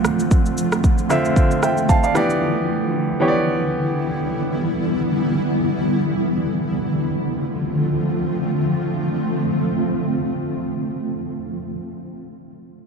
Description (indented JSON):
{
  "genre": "amapiano",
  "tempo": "114 BPM",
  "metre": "4/4",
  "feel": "swing 55% on 16ths",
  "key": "D dorian",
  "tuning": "A4 = 440 Hz",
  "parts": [
    { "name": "clear concert grand piano", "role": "accompaniment", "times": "0.0-4.5 s", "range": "D3 to A5", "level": "-20 LUFS", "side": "right 1 dB", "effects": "none" },
    { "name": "granular cloud pad", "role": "sustained chords", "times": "0.0-11.2 s", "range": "D3 to F4", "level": "-21 LUFS", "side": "equal", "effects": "built-in reverb, sidechain pumping" },
    { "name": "deep house drum kit", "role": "drums", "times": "0.0-2.4 s", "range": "kick drum, rim click, shaker", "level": "-18 LUFS", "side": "equal", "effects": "vintage 12-bit sampler grit" }
  ],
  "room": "light reverb, studio reverb",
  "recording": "none",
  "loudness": "-18 LUFS",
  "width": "side -5 dB against mid",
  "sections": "0.0-6.6 A section; 6.6-10.8 B section",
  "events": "none",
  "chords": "0.0 Dm7; 2.2 Em7; 6.6 Dm7"
}